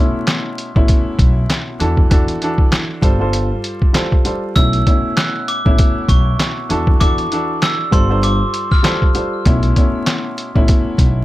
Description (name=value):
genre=hip hop, boom-bap hip-hop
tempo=98 BPM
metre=4/4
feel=swing 56% on 16ths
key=unclear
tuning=A4 = 440 Hz
part: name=warm upright piano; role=accompaniment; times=0.0-11.2 s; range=B2 to C5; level=-20 LUFS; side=equal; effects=high-pass filter, low-pass filter
part: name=trip hop sampler-style drum kit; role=drums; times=0.3-11.1 s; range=handclaps, hi-hat, kick drum, snare drum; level=-14 LUFS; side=equal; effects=none
part: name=upright bass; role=bass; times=0.8-11.2 s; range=G1 to E2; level=-18 LUFS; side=equal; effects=none
part: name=glockenspiel with hard plastic mallets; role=melody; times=4.6-9.4 s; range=C6 to F#6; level=-22 LUFS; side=right 1 dB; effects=high-pass filter, low-pass filter, ping-pong delay
room=little or no reverb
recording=vinyl crackle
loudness=-13 LUFS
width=side -16 dB against mid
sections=0.0-11.2 A section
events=none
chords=0.0 B9sus4; 1.8 E9sus4; 3.0 G9sus4; 4.6 B9sus4; 6.7 E9sus4; 7.9 G9sus4; 9.5 B9sus4